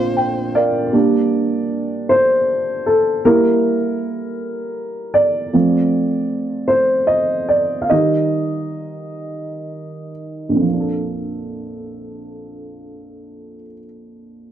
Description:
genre	pop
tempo	40-53 BPM (dotted quarters)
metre	6/8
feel	straight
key	Bb major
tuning	A4 = 440 Hz
part	warm violin	melody	0.0-0.6 s	C5	-27 LUFS	left 4 dB	none
part	dark upright piano	accompaniment	0.0-14.5 s	Bb1 to G5	-16 LUFS	right 1 dB	none
room	light reverb, small room ambience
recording	dry, close 1970s-style studio recording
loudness	-15 LUFS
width	side -10 dB against mid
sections	0.9-10.6 A section; 10.6-13.7 B section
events	upright piano fill 0.0-0.9; upright piano solo 0.9-10.6; slowing down 5.5-10.6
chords	0.0 Bbsus2; 0.9 Gm; 3.3 Gm6; 5.5 F; 7.9 Eb; 10.6 Bbmaj7

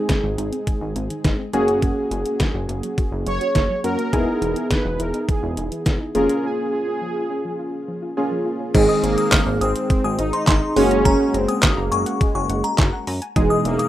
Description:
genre	synth-pop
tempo	104 BPM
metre	4/4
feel	straight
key	unclear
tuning	A4 = 441 Hz
part	warm analog keys	accompaniment	0.0-13.9 s	B2 to Bb4	-22 LUFS	equal	chorus, plate reverb
part	soft round pluck	arpeggios	0.0-13.8 s	Eb3 to D#6	-32 LUFS	left 1 dB	chorus, digital delay, plate reverb
part	detuned 8-bit digital drum machine	drums	0.1-13.9 s	crash cymbal, handclaps, hi-hat, kick drum, snare drum	-20 LUFS	equal	overdrive
part	chorused synth bass	bass	0.2-13.8 s	E1 to Gb2	-26 LUFS	equal	none
part	analog synth brass	melody	3.3-13.9 s	Ab3 to Db5	-25 LUFS	right 2 dB	chorus, plate reverb
part	glassy synth bell	second line	8.9-13.9 s	Bb5 to F6	-26 LUFS	left 3 dB	chorus, digital delay, plate reverb
room	wet studio reverb, RT60 0.5 s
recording	rough home demo mix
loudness	-18 LUFS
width	side -13 dB against mid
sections	0.0-8.7 A section; 8.7-13.9 B section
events	break 6.4-8.7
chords	0.0 Ab; 1.5 Gbadd9; 4.1 Emaj7; 6.2 Db6/F; 8.7 Ab; 10.8 Gbadd9; 13.4 Emaj7

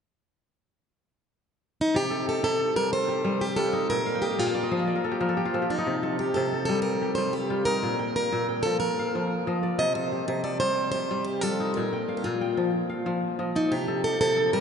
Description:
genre	west african traditional, West African string and xylophone music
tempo	122 BPM (dotted quarters)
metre	12/8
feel	straight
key	C dorian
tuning	A4 = 445 Hz
part	picked plugged-in steel-string acoustic guitar	melody	1.8-14.6 s	Eb4 to Eb5	-26 LUFS	equal	none
part	kora	arpeggios	1.9-14.6 s	Bb2 to A5	-28 LUFS	left 1 dB	none
room	wet cathedral reverb, RT60 5.4 s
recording	in a vast, echoing space, nothing above 11.0 kHz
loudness	-24 LUFS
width	side -6 dB against mid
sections	0.0-1.9 A section; 1.9-14.6 B section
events	kora fill 4.1-5.9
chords	0.0 N.C.; 1.9 C5; 3.9 Bb5; 5.9 Cm; 7.8 Bb5; 9.8 Cm; 11.8 Bb5; 13.7 Cm

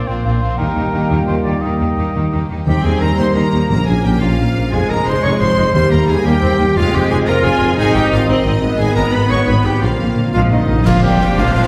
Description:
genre	cinematic, heroic adventure film score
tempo	117 BPM (dotted quarters)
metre	6/8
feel	straight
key	Eb mixolydian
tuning	A4 = 441 Hz
part	warm symphonic violin section	melody	0.0-11.7 s	F4 to Db6	-28 LUFS	equal	none
part	bright symphonic violin section	second line	0.0-11.7 s	D4 to Db6	-29 LUFS	equal	none
part	clear oboe	second line	0.0-2.5 s	Bb4 to Eb5	-28 LUFS	equal	none
part	mellow hollow concert flute	second line	0.0-2.5, 10.3-11.7 s	Eb5 to G5	-27 LUFS	equal	none
part	warm clarinet	second line	0.0-11.7 s	G3 to Db5	-24 LUFS	equal	none
part	clear symphonic viola section	accompaniment	0.0-11.7 s	G3 to F4	-24 LUFS	equal	none
part	mellow French horn section	sustained chords	0.0-2.5, 10.3-11.7 s	Eb3 to Eb4	-27 LUFS	equal	none
part	warm trombone section	sustained chords	0.0-11.7 s	D3 to Db4	-24 LUFS	equal	none
part	rich symphonic cello section	bass	0.1-11.7 s	Eb2 to G3	-24 LUFS	equal	none
part	rich symphonic double bass section	bass	0.1-11.6 s	F1 to Eb2	-22 LUFS	equal	none
part	mellow tuba	bass	2.7-11.6 s	F1 to Eb2	-24 LUFS	equal	none
part	timpani	percussion	2.7-6.2, 9.8-11.3 s	Bb2 to Eb3	-23 LUFS	equal	none
part	cymbal swell, clash cymbals and concert bass drum	percussion	8.8-11.5 s	none	-27 LUFS	equal	none
part	clear trumpet	stabs	10.3-11.7 s	Eb4 to G4	-23 LUFS	equal	none
part	concert snare drum, clash cymbals and concert bass drum	drums	10.9-11.7 s	none	-24 LUFS	equal	none
room	wet recital hall reverb, RT60 1.6 s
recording	heard from further back in the room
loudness	-15 LUFS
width	mono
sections	0.0-2.7 A section; 2.7-10.9 B section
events	timpani fill 9.8-10.9; band accent 10.9-11.2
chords	0.0 Bbadd9; 0.6 Eb; 3.7 Bbm; 4.7 Fm; 5.7 Eb; 6.8 Fm; 7.8 Ab; 8.8 Abm; 9.8 Bbadd9

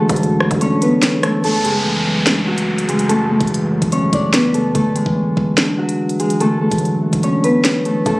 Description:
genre	hip hop, drill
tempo	145 BPM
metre	4/4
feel	half-time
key	unclear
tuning	A4 = 437 Hz
part	Celtic harp	melody	0.0-8.2 s	F#3 to D5	-17 LUFS	equal	low-pass filter, digital delay
part	mellow tine electric piano	accompaniment	0.0-8.2 s	F#2 to D4	-19 LUFS	equal	low-pass filter
part	growling 808-style bass	bass	0.1-0.6, 8.1-8.2 s	F#1 to D2	-22 LUFS	equal	none
part	drill drum kit	drums	0.1-8.2 s	hi-hat, kick drum, rim click, snare drum	-18 LUFS	equal	none
part	downlifter and impact	sound effects	1.4-4.7, 8.1-8.2 s	none	-24 LUFS	equal	none
room	light reverb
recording	recorded on a phone in the room, club reverb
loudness	-14 LUFS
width	side -21 dB against mid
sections	0.0-1.4 A section; 1.4-8.1 B section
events	kick muted 0.6-1.4, 7.2-8.1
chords	0.0 Dadd9; 1.4 F#m7; 4.7 Dadd9

